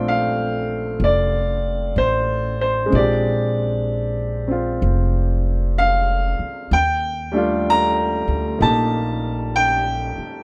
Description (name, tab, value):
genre	jazz ballad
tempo	63 BPM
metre	4/4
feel	swing 66% on 8ths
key	Bb major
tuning	A4 = 441 Hz
part	clear baby grand piano	accompaniment	0.0-10.4 s	G3 to B5	-22 LUFS	equal	none
part	upright bass	bass	0.0-10.2 s	F1 to Eb2	-25 LUFS	equal	none
room	light reverb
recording	none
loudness	-20 LUFS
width	mono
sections	0.0-10.4 A section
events	none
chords	0.0 Bbmaj9; 2.9 Bb13; 6.7 Ebmaj9#11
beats	0.05 1.01 1.97 | 2.92 3.88 4.82 5.77 | 6.72 7.66 8.61 9.55